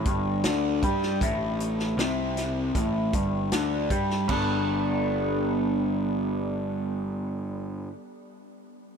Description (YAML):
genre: psychedelic rock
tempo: 78 BPM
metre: 4/4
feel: straight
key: G major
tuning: A4 = 440 Hz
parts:
  - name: electric guitar through a small old amp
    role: riff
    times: 0.0-7.9 s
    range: G2 to A4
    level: -26 LUFS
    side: equal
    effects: phaser
  - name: fuzz picked electric bass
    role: bass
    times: 0.0-7.9 s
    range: G1 to G2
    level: -32 LUFS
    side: equal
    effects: overdrive
  - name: vintage drum kit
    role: drums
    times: 0.1-4.5 s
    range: crash cymbal, hi-hat, kick drum, snare drum, toms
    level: -31 LUFS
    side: equal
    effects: none
room: moderate huge ambient reverb, RT60 9.0 s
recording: none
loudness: -24 LUFS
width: side -6 dB against mid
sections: 0.0-4.3 A section; 4.3-7.4 B section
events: none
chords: 0.0 Am/G; 4.3 Gadd9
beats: 0.44 | 1.21 1.98 2.75 3.52 | 4.29 5.06 5.83 6.60